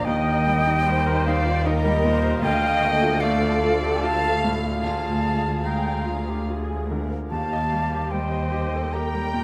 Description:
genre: cinematic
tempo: 74 BPM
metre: 3/4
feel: rubato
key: unclear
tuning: A4 = 440 Hz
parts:
  - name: muted studio violin section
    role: melody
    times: 0.0-9.4 s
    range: G4 to A4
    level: -36 LUFS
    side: equal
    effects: none
  - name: mellow silver concert flute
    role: second line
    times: 0.0-9.4 s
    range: Eb5 to Bb5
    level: -28 LUFS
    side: equal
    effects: none
  - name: muted studio violin section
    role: second line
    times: 0.0-9.4 s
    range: Bb4 to G5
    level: -33 LUFS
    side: equal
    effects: none
  - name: bright baby grand piano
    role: accompaniment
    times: 0.0-9.4 s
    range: D2 to F5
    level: -30 LUFS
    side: equal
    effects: none
  - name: muted symphonic viola section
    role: accompaniment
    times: 0.0-9.4 s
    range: Bb3 to G5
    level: -34 LUFS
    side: equal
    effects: none
  - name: concert harp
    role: arpeggios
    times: 0.0-9.4 s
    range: D3 to F5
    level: -34 LUFS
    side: equal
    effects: none
  - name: muted studio cello section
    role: bass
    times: 0.0-9.4 s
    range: D2 to Eb2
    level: -32 LUFS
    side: equal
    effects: none
  - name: muted studio double bass section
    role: bass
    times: 0.0-9.4 s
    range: D2 to Eb2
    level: -32 LUFS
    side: equal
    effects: none
room: moderate scoring stage reverb, RT60 1.5 s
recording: none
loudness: -23 LUFS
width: mono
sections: 0.0-9.4 A section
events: none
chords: 0.1 Eb; 2.4 Dm; 4.8 Bb7/D; 7.3 Eb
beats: | 0.06 0.86 1.66 | 2.43 3.21 4.01 | 4.83 5.64 6.47 | 7.30 8.12 8.93

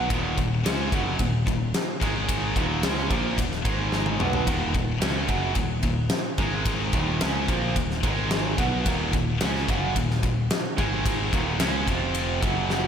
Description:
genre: hard rock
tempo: 110 BPM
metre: 4/4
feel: straight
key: Eb minor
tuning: A4 = 439 Hz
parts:
  - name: cranked stack guitar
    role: riff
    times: 0.0-12.9 s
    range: Eb2 to Db4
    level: -29 LUFS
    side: right 8 dB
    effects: overdrive, slapback echo
  - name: scooped high-gain guitar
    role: riff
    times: 0.0-12.9 s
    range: Eb2 to Db4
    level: -29 LUFS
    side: left 7 dB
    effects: distortion, slapback echo
  - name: modern bright picked electric bass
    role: bass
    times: 0.0-12.9 s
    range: Eb1 to Db2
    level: -30 LUFS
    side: equal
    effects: none
  - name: huge arena drum kit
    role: drums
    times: 0.1-12.8 s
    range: kick drum, ride cymbal, snare drum, toms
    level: -26 LUFS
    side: equal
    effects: none
room: moderate lush hall reverb, RT60 2.2 s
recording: big arena sound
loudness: -22 LUFS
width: side -8 dB against mid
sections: 0.0-12.9 A section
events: drum fill 3.9-4.5, 12.7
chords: 0.0 Ebm; 2.0 Ab5; 2.6 Eb5; 3.7 Ab5; 4.2 Ebm; 6.4 Ab5; 6.9 Eb5; 8.0 Ab5; 8.6 Ebm; 10.8 Ab5; 11.3 Eb5; 11.9 F5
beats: | 0.10 0.65 1.20 1.74 | 2.29 2.84 3.38 3.93 | 4.48 5.02 5.57 6.12 | 6.67 7.21 7.76 8.31 | 8.86 9.40 9.95 10.50 | 11.05 11.60 12.15 12.70

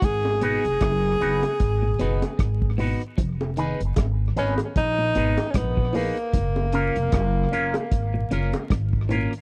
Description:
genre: roots reggae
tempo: 76 BPM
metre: 4/4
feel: swing 57% on 16ths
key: unclear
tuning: A4 = 440 Hz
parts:
  - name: breathy tenor saxophone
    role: melody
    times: 0.0-8.7 s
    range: Bb3 to Ab4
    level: -28 LUFS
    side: equal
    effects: tape echo
  - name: clean electric guitar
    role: arpeggios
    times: 0.0-9.3 s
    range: Ab2 to F3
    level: -33 LUFS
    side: equal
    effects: none
  - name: upright bass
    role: bass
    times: 0.0-9.2 s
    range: F1 to Bb1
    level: -27 LUFS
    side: equal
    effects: none
  - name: cloth-damped thuddy drum kit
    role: drums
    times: 0.0-9.4 s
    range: hi-hat, kick drum, rim click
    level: -27 LUFS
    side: equal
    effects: none
  - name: bongos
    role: percussion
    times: 0.2-9.3 s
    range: none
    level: -32 LUFS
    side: equal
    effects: none
  - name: electric guitar with an envelope filter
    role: accompaniment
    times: 0.4-9.3 s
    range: Bb3 to Cb5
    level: -32 LUFS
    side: equal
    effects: phaser, tape echo
room: little or no reverb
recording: dry, close 1970s-style studio recording, vinyl crackle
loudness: -23 LUFS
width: mono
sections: 0.0-9.4 A section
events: none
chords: 0.0 Fm7b5; 6.3 Gbmaj7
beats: | 0.03 0.81 1.60 2.39 | 3.18 3.97 4.76 5.55 | 6.34 7.13 7.92 8.71

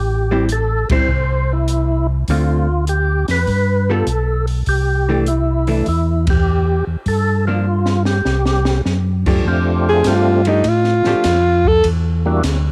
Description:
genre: soul jazz organ trio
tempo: 100 BPM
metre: 4/4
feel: swing 68% on 8ths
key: C major, F major from 9.5 s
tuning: A4 = 439 Hz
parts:
  - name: percussive tonewheel organ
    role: melody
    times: 0.0-12.4 s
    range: G3 to C5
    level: -23 LUFS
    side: equal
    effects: slow rotary speaker, overdrive, chorus vibrato
  - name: mellow tonewheel organ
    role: bass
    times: 0.0-12.7 s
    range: A1 to A2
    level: -20 LUFS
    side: equal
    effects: chorus vibrato, slow rotary speaker
  - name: vintage hollow-body jazz guitar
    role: accompaniment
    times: 0.3-11.2 s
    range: D3 to A4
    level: -24 LUFS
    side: equal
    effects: cassette tape
  - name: open jazz drum kit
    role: drums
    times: 0.5-12.6 s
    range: crash cymbal, hi-hat, kick drum, ride cymbal, snare drum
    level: -25 LUFS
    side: equal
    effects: cassette tape
  - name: clear alto saxophone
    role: melody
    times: 9.9-11.9 s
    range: Eb4 to A4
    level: -17 LUFS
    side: equal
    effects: none
room: small room ambience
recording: home recording on cassette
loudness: -16 LUFS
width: mono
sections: 0.0-9.5 A section; 9.5-12.7 B section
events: band accent 0.8, 6.2; drum fill 7.7-8.9; alto saxophone solo 9.5-12.7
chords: 0.0 Am7; 2.3 Dm7; 3.5 G9; 4.7 C69; 7.1 Gm7; 8.3 Csus2; 9.5 F69; 11.8 Em7b5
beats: 0.49 1.08 1.68 | 2.28 2.88 3.48 4.08 | 4.67 5.27 5.87 6.47 | 7.07 7.66 8.26 8.86 | 9.46 10.05 10.65 11.25 | 11.84 12.44

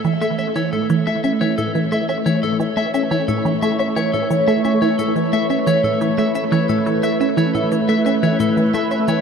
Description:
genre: ambient, sequencer-driven space music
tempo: 88 BPM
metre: 4/4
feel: straight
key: A major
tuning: A4 = 440 Hz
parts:
  - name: phased analog pad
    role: sustained chords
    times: 0.0-9.2 s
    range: A3 to E5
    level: -19 LUFS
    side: equal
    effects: phaser, chorus
  - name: resonant blip pluck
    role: riff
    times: 0.0-9.2 s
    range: A2 to C#4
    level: -20 LUFS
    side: right 2 dB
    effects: chorus, phaser, tape echo
  - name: bongos and cabasa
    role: percussion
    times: 0.0-9.2 s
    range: none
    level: -45 LUFS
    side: left 4 dB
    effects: tape echo
  - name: electric guitar at the edge of break-up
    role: arpeggios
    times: 0.2-9.2 s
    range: A4 to E5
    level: -24 LUFS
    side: left 3 dB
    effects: auto-pan, tape echo
room: wet huge ambient reverb, RT60 7.9 s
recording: dark, warm production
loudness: -16 LUFS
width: side -6 dB against mid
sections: 0.0-9.2 A section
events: none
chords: 0.0 A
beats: 0.56 1.24 1.92 | 2.60 3.29 3.97 4.65 | 5.33 6.01 6.70 7.38 | 8.06 8.74

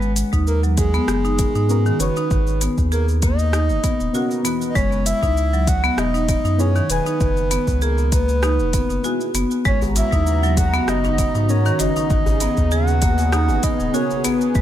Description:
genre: organic downtempo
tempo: 98 BPM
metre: 4/4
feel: swing 54% on 16ths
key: G# minor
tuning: A4 = 440 Hz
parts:
  - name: breathy flute-like synth lead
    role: melody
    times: 0.0-14.6 s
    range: G#4 to F#5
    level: -24 LUFS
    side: equal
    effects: chorus, ping-pong delay
  - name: warm sub bass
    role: bass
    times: 0.0-14.6 s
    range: D#1 to G#2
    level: -20 LUFS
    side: equal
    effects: none
  - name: organic electronic drum kit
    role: drums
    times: 0.0-14.6 s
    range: hi-hat, rim click, shaker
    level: -28 LUFS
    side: equal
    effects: none
  - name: marimba with medium hard mallets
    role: arpeggios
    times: 0.3-14.6 s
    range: D#3 to G#4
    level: -23 LUFS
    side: equal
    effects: digital delay
  - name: electronic kick drum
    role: drums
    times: 0.3-14.6 s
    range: none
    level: -21 LUFS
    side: equal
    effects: overdrive
  - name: deep mellow chord stab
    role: accompaniment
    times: 1.7-14.2 s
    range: E3 to G#5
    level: -27 LUFS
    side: left 2 dB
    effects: chorus, phaser, sidechain pumping, digital delay
  - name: warm analog pad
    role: sustained chords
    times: 9.7-14.6 s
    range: C#3 to A#5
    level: -26 LUFS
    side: right 2 dB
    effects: chorus, sidechain pumping
  - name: djembe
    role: percussion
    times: 9.8-14.4 s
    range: none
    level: -28 LUFS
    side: left 1 dB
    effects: none
room: little or no reverb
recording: none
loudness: -16 LUFS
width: side -11 dB against mid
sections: 0.0-14.6 A section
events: none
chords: 0.0 G#m11; 4.8 F#9sus4; 9.7 G#m11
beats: 0.47 1.08 1.69 | 2.31 2.92 3.53 4.14 | 4.75 5.37 5.98 6.59 | 7.20 7.82 8.43 9.04 | 9.65 10.27 10.88 11.49 | 12.10 12.71 13.33 13.94 | 14.55

